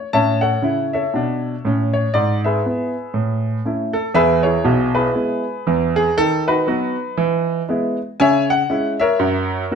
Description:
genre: jazz, stride piano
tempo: 119 BPM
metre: 4/4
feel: swing 59% on 8ths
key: A major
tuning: A4 = 444 Hz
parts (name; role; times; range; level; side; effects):
- clear baby grand piano; solo; 0.0-9.8 s; B1 to A5; -16 LUFS; equal; none
room: moderate club reverb, RT60 0.8 s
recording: none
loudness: -16 LUFS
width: side -6 dB against mid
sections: 0.1-9.8 A section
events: none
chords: 0.1 A; 2.1 E/G#; 3.1 A; 4.1 E; 6.2 B/D#; 7.2 E; 8.2 C#m; 9.2 F#7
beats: | 0.11 0.61 1.12 1.62 | 2.13 2.63 3.14 3.64 | 4.15 4.65 5.16 5.66 | 6.16 6.67 7.17 7.68 | 8.18 8.68 9.19 9.69

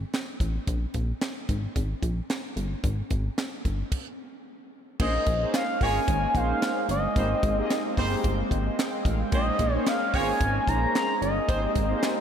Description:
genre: early-eighties boogie funk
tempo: 111 BPM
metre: 4/4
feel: swing 56% on 16ths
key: Bb dorian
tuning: A4 = 440 Hz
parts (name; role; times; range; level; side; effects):
- chorused synth bass; bass; 0.0-11.9 s; G1 to Bb1; -28 LUFS; equal; none
- tight funk drum kit; drums; 0.1-12.2 s; crash cymbal, handclaps, hi-hat, kick drum, snare drum; -30 LUFS; equal; none
- expressive synth lead; melody; 5.0-12.2 s; Eb5 to Bb5; -28 LUFS; equal; chorus, ping-pong delay
- warm horn section; second line; 5.0-11.6 s; G3 to Db5; -36 LUFS; right 1 dB; none
- mellow synth brass; accompaniment; 5.0-12.1 s; Bb3 to G5; -31 LUFS; left 1 dB; chorus
- brassy analog pad; sustained chords; 5.0-12.2 s; Ab3 to Db4; -32 LUFS; right 2 dB; chorus
room: wet cathedral reverb, RT60 5.1 s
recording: dreamy mix soaked in reverb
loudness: -24 LUFS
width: side -8 dB against mid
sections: 0.0-5.0 A section; 5.0-12.2 B section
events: stop 3.9-5.0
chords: 0.0 N.C.; 0.7 Gm; 2.8 N.C.; 5.0 Bbm11; 7.2 Abmaj9; 9.3 Bbm11; 11.5 Abmaj9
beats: 0.13 | 0.67 1.22 1.75 2.30 | 2.84 3.38 3.92 4.46 | 5.00 5.54 6.08 6.62 | 7.16 7.70 8.24 8.78 | 9.32 9.86 10.40 10.94 | 11.48 12.03

